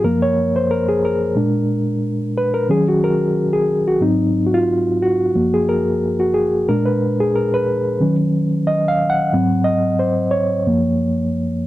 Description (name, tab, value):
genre	soul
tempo	90 BPM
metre	4/4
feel	swing 54% on 16ths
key	Gb lydian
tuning	A4 = 440 Hz
part	mellow reed electric piano	solo	0.0-11.7 s	Gb2 to Gb5	-15 LUFS	equal	fast tremolo
room	light reverb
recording	dry, close 1970s-style studio recording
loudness	-15 LUFS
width	side -15 dB against mid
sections	0.0-11.7 A section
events	reed electric piano solo 0.0-11.7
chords	0.0 Gbmaj7; 1.4 Bb7; 2.7 Ebm7; 4.0 Ab7; 5.3 Gbmaj7; 6.7 Bb7; 8.0 Ebm7; 9.3 Ab7; 10.7 Gbmaj7